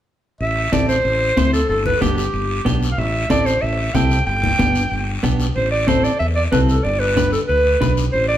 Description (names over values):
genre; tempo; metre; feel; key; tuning
latin, cumbia; 186 BPM; 4/4; straight; A minor; A4 = 440 Hz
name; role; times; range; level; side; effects
clear clarinet; melody; 0.4-8.4 s; G4 to G5; -19 LUFS; right 1 dB; none
fingered electric bass; bass; 0.4-8.4 s; G1 to E2; -21 LUFS; equal; none
guiro; percussion; 0.4-8.4 s; none; -30 LUFS; left 3 dB; none
clean electric guitar; accompaniment; 0.7-8.0 s; B3 to C5; -22 LUFS; right 1 dB; none
congas; percussion; 0.7-8.0 s; none; -24 LUFS; left 3 dB; none
room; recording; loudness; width
wet stone room reverb, RT60 1.3 s; band playing live in one room; -15 LUFS; side -11 dB against mid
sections
0.4-5.6 A section; 5.6-8.4 B section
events
none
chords
0.4 Am; 1.7 G; 3.0 Am; 4.3 G; 5.6 Am; 6.8 G